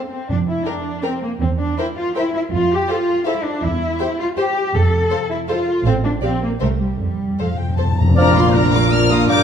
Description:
quick classical-period movement for symphony orchestra; 161 BPM; 3/4; straight; F major; A4 = 440 Hz
warm chamber cello section; bass; 0.1-9.4 s; G2 to A4; -21 LUFS; equal
warm chamber double bass section; bass; 0.3-9.4 s; G1 to F2; -21 LUFS; right 4 dB
timpani; percussion; 0.3-0.8, 4.7-8.2 s; F2; -20 LUFS; left 1 dB
dark chamber violin section; melody; 0.7-9.4 s; E5 to F6; -25 LUFS; left 4 dB
rich chamber violin section; second line; 0.7-9.4 s; F4 to F5; -27 LUFS; left 5 dB
rich symphonic viola section; accompaniment; 0.7-9.4 s; F3 to Bb4; -25 LUFS; equal
dark French horn section; sustained chords; 8.1-9.4 s; Bb3 to D4; -21 LUFS; left 1 dB
clear oboe; second line; 8.2-9.4 s; Bb4 to D5; -24 LUFS; right 1 dB
mellow clarinet; second line; 8.2-9.4 s; D5; -28 LUFS; left 3 dB
mellow hollow flute section; second line; 8.2-9.4 s; F6 to G6; -25 LUFS; left 5 dB
mellow bassoon; accompaniment; 8.2-9.4 s; F3 to Bb3; -24 LUFS; right 1 dB
moderate scoring stage reverb, RT60 2.1 s; dark, warm production; -16 LUFS; side -8 dB against mid
0.0-8.2 A section; 8.2-9.4 B section
timpani fill 7.0-8.2
0.3 Gm7/F (rootless); 1.4 C7/E (rootless); 2.5 F; 3.6 C/E (rootless); 4.7 F; 5.9 F/A (rootless); 6.2 Gm/Bb; 6.6 C7(no3); 7.0 F; 8.2 Bb

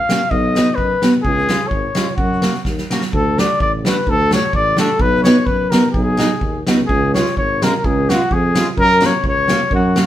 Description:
alpine folk, alpine dance band; 128 BPM; 2/4; rubato; A4 = 440 Hz
mellow trumpet; melody; 0.0-10.1 s; F#4 to E#5; -17 LUFS; left 2 dB
picked acoustic archtop guitar; accompaniment; 0.1-10.1 s; G#3 to F#4; -18 LUFS; equal
natural country drum kit; drums; 0.1-10.1 s; kick drum, snare drum; -20 LUFS; right 1 dB
mellow tuba; bass; 0.3-10.0 s; G#1 to F#2; -20 LUFS; right 1 dB
wet stone room reverb, RT60 1.0 s; band playing live in one room; -13 LUFS; side -12 dB against mid
0.0-3.1 A section; 3.1-10.1 B section
drum fill 2.7-3.1
0.3 B; 1.3 C#; 2.2 F#; 3.1 D; 5.0 B; 6.9 C#; 8.8 F#

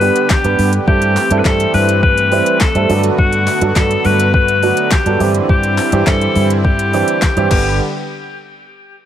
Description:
dance-pop; 104 BPM; 4/4; straight; A4 = 442 Hz
edgy alto saxophone; melody; 0.0-7.8 s; F#4 to B4; -17 LUFS; left 3 dB; tape echo
warm grand piano; accompaniment; 0.0-7.8 s; D3 to B4; -18 LUFS; right 7 dB; sidechain pumping
soft supersaw; sustained chords; 0.0-7.8 s; D3 to G4; -21 LUFS; equal; sidechain pumping
vintage muted fingered electric bass; bass; 0.0-7.8 s; G1 to G2; -17 LUFS; left 1 dB; sidechain pumping
smooth R&B drum kit; drums; 0.0-7.6 s; crash cymbal, handclaps, hi-hat, kick drum, snare drum; -17 LUFS; left 1 dB
group handclap; percussion; 0.3-7.8 s; -27 LUFS; left 5 dB
light reverb; -11 LUFS; side -10 dB against mid
0.0-7.8 A section; 7.8-9.1 B section
0.0 G; 0.9 Am7/G; 2.9 Bm7/G; 5.2 Cadd9/G; 7.5 G; 7.8 N.C.

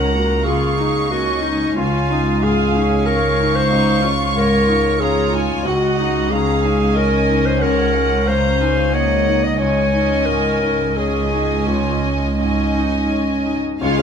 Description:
cinematic; 83-94 BPM; 3/4; rubato; A4 = 440 Hz
warm studio violin section; melody; 0.0-14.0 s; F5 to Db6; -26 LUFS; equal
warm clarinet; second line; 0.0-13.4 s; Eb4 to Eb5; -20 LUFS; left 2 dB
warm studio violin section; second line; 0.0-14.0 s; F4 to Gb5; -26 LUFS; left 2 dB
clear grand piano; accompaniment; 0.0-14.0 s; Db2 to Eb4; -23 LUFS; left 5 dB
warm studio viola section; accompaniment; 0.0-14.0 s; F3 to Gb4; -24 LUFS; equal
rich studio double bass section; bass; 0.0-14.0 s; Db2; -23 LUFS; right 4 dB
warm studio cello section; bass; 0.0-14.0 s; Db2; -24 LUFS; right 3 dB
mellow French horn section; sustained chords; 13.8-14.0 s; Ab3 to Db4; -20 LUFS; left 10 dB
moderate scoring stage reverb, RT60 1.7 s; -15 LUFS; side -7 dB against mid
0.0-13.8 A section
0.0 Ebm7/Db; 1.8 Dbadd9; 5.7 Gb6/Db; 9.6 Absus4/Db

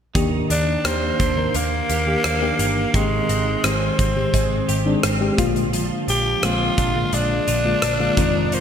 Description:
1980s-style pop; 86 BPM; 4/4; straight; Eb major; A4 = 443 Hz
mellow FM electric piano; accompaniment; 0.1-8.6 s; D3 to Bb4; -23 LUFS; left 3 dB; chorus, tremolo
twelve-string electric guitar; riff; 0.2-8.6 s; Eb3 to G4; -28 LUFS; right 7 dB; ensemble chorus, ping-pong delay
vintage muted picked electric bass; bass; 0.2-8.6 s; F1 to Eb2; -25 LUFS; equal
huge arena drum kit; drums; 0.2-8.6 s; hi-hat, kick drum, rim click; -24 LUFS; equal; gated reverb
raspy tenor saxophone; melody; 0.5-8.6 s; Ab3 to G4; -22 LUFS; equal; ping-pong delay
moderate lush hall reverb, RT60 3.0 s; bright 1980s-style digital production, faint mains hum; -17 LUFS; side -8 dB against mid
0.2-8.6 A section
0.2 Ebmaj7; 2.9 Abmaj7; 5.4 Bb7

